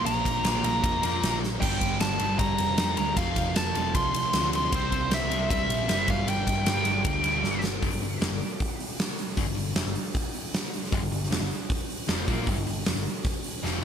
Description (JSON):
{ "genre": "hard rock", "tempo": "155 BPM", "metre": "4/4", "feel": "straight", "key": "G minor", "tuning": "A4 = 439 Hz", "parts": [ { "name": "biting lead guitar", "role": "melody", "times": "0.0-7.6 s", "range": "C5 to C6", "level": "-28 LUFS", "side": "equal", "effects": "overdrive, digital delay" }, { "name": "overdriven semi-hollow guitar", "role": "riff", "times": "0.0-7.6, 10.9-13.8 s", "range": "F2 to C4", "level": "-33 LUFS", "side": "right 10 dB", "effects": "analog chorus" }, { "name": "sludgy distorted guitar", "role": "riff", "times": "0.0-13.8 s", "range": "F2 to C4", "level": "-34 LUFS", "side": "left 12 dB", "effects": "overdrive" }, { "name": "hollow-body short-scale picked electric bass", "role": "bass", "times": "0.0-13.8 s", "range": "F1 to F2", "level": "-32 LUFS", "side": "equal", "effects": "none" }, { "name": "huge arena drum kit", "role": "drums", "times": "0.1-13.7 s", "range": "crash cymbal, hi-hat, kick drum, ride cymbal, snare drum", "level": "-28 LUFS", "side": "equal", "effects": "gated reverb" } ], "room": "light reverb", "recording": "bright 1980s-style digital production", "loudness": "-24 LUFS", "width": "side -8 dB against mid", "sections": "0.0-7.8 A section; 7.8-13.8 B section", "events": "drum fill 1.4, 7.4-7.8, 13.6", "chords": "0.0 Bb5; 1.6 Gm; 3.2 F; 4.7 C; 6.1 G5; 7.8 Gm" }